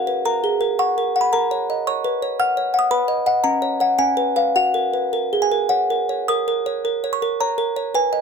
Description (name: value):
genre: classical, lullaby for music box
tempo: 99-114 BPM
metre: 3/4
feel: rubato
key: F# major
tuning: A4 = 439 Hz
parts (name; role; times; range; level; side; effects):
- music box; solo; 0.0-8.2 s; C#4 to E#6; -18 LUFS; equal; none
room: light reverb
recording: close, detailed microphones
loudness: -18 LUFS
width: side -6 dB against mid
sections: 0.0-6.3 A section; 6.3-8.2 B section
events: none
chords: 0.0 F#; 1.3 F#/A#; 2.9 B; 3.4 F#/C#; 4.0 C#7; 4.6 F#; 6.3 A#m